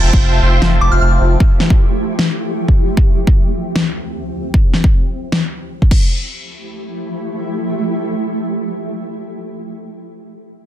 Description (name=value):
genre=future bass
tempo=153 BPM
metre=4/4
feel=half-time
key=F major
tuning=A4 = 440 Hz
part: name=shimmering ambient pad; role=sustained chords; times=0.9-8.9 s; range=D2 to G4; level=-22 LUFS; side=right 1 dB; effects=chorus, built-in reverb, sidechain pumping
part: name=dense compressed supersaw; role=riff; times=0.0-1.4 s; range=F4 to C6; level=-20 LUFS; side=equal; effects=sidechain pumping, low-pass filter, tape echo
part: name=saturated sub bass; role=bass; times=0.0-1.4 s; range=F1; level=-13 LUFS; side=equal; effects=sidechain pumping
part: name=electronic kick drum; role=drums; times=0.1-6.0 s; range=none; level=-12 LUFS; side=equal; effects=none
part: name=pop drum kit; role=drums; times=0.6-6.0 s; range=crash cymbal, snare drum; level=-19 LUFS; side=left 2 dB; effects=none
part: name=soft synth bell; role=melody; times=0.8-1.1 s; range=D6 to F6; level=-20 LUFS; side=left 1 dB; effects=chorus, phaser, sidechain pumping, digital delay
room=little or no reverb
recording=dense, heavily limited modern master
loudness=-13 LUFS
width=side -12 dB against mid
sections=0.0-6.1 A section; 6.1-9.2 B section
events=filter sweep on supersaw synth 0.0-1.4; filter sweep on ambient pad 0.0-4.5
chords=0.0 Fmaj9; 3.0 Dm11; 4.5 N.C.; 5.9 Fmaj9